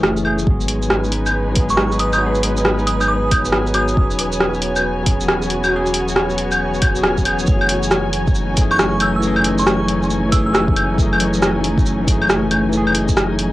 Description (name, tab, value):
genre	future garage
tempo	137 BPM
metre	4/4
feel	swing 64% on 16ths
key	F# dorian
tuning	A4 = 440 Hz
part	bell-like tine electric piano	accompaniment	0.0-13.5 s	E3 to G#4	-22 LUFS	left 2 dB	medium stereo tremolo, sidechain pumping, cassette tape, tape echo
part	muted chamber string section	sustained chords	0.0-13.5 s	E3 to G#5	-22 LUFS	equal	sidechain pumping, cassette tape
part	soft dub sub bass	bass	0.0-13.5 s	E1 to G#1	-24 LUFS	equal	sidechain pumping
part	deep house drum kit	drums	0.0-13.5 s	claves, hi-hat, rim click, shaker	-19 LUFS	equal	cassette tape
part	electronic kick drum	drums	0.5-13.2 s	none	-17 LUFS	equal	cassette tape
part	backwards swelling texture	texture	1.9-13.5 s	D#4 to C#5	-30 LUFS	equal	built-in reverb, cassette tape
part	glassy synth bell	melody	1.7-4.0, 8.7-10.9 s	C#6 to E6	-23 LUFS	right 2 dB	chorus, cassette tape, analog delay
room	moderate booth ambience, RT60 0.2 s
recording	home recording on cassette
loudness	-14 LUFS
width	side -16 dB against mid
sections	0.0-7.5 A section; 7.5-13.5 B section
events	none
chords	0.5 G#m7; 4.0 E69; 7.5 F#m9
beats	0.03 | 0.47 0.91 1.34 1.78 | 2.22 2.66 3.10 3.53 | 3.97 4.41 4.85 5.29 | 5.72 6.16 6.60 7.04 | 7.48 7.91 8.35 8.79 | 9.23 9.66 10.10 10.54 | 10.98 11.42 11.86 12.29 | 12.73 13.17